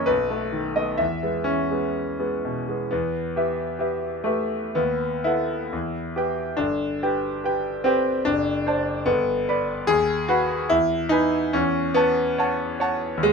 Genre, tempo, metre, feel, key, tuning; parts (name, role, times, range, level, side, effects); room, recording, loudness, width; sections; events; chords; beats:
classical, romantic character piece for solo piano; 57-75 BPM; 2/4; rubato; E minor; A4 = 440 Hz
bright concert grand piano; solo; 0.0-13.3 s; F#1 to B5; -21 LUFS; equal
light reverb; close, detailed microphones; -21 LUFS; side -5 dB against mid
0.0-2.9 A section; 2.9-13.3 B section
0.1 B7; 1.0 E; 2.9 Em; 4.8 B7/D#; 5.7 Em; 6.6 G; 8.3 D7/F#; 9.1 G; 9.9 B/D#; 10.7 E; 11.5 F#m7/E
0.09 | 1.00 1.96 | 2.92 3.81 | 4.77 5.72 | 6.60 7.45 | 8.27 9.08 | 9.89 10.69 | 11.53 12.37 | 13.24